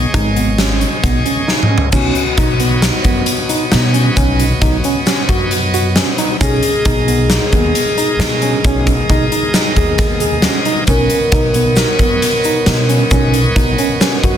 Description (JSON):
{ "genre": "progressive instrumental, band music in an uneven meter", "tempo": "134 BPM", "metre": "5/4", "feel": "straight", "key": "B major", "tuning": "A4 = 440 Hz", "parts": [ { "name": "bright tonewheel organ", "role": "accompaniment", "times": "0.0-14.4 s", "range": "B2 to D#5", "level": "-20 LUFS", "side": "right 1 dB", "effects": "overdrive, slow rotary speaker" }, { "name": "tine electric piano", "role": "arpeggios", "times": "0.0-14.4 s", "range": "B3 to G#4", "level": "-20 LUFS", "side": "right 2 dB", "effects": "overdrive, fast stereo tremolo" }, { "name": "upright bass", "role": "bass", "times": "0.0-14.4 s", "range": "G#1 to B2", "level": "-17 LUFS", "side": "equal", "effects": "none" }, { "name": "big rock drum kit", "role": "drums", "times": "0.1-14.3 s", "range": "crash cymbal, hi-hat, kick drum, snare drum, toms", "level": "-15 LUFS", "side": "equal", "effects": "none" }, { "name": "vibraphone with soft mallets", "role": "second line", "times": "1.9-14.4 s", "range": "F#4 to A#4", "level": "-20 LUFS", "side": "left 2 dB", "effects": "none" }, { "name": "tube shaker", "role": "percussion", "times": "1.9-14.2 s", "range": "none", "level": "-30 LUFS", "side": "right 5 dB", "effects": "none" } ], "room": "light reverb", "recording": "dense, heavily limited modern master", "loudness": "-11 LUFS", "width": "side -9 dB against mid", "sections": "0.0-1.9 A section; 1.9-14.4 B section", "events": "drum fill 1.5-1.9", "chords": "0.0 B69; 1.9 Badd9; 6.4 G#madd9/B; 10.9 Badd9", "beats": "0.14 0.59 1.04 1.49 | 1.93 2.38 2.83 3.28 3.72 | 4.17 4.62 5.07 5.51 5.96 | 6.41 6.86 7.30 7.75 8.20 | 8.65 9.09 9.54 9.99 10.44 | 10.88 11.33 11.78 12.22 12.67 | 13.12 13.57 14.02" }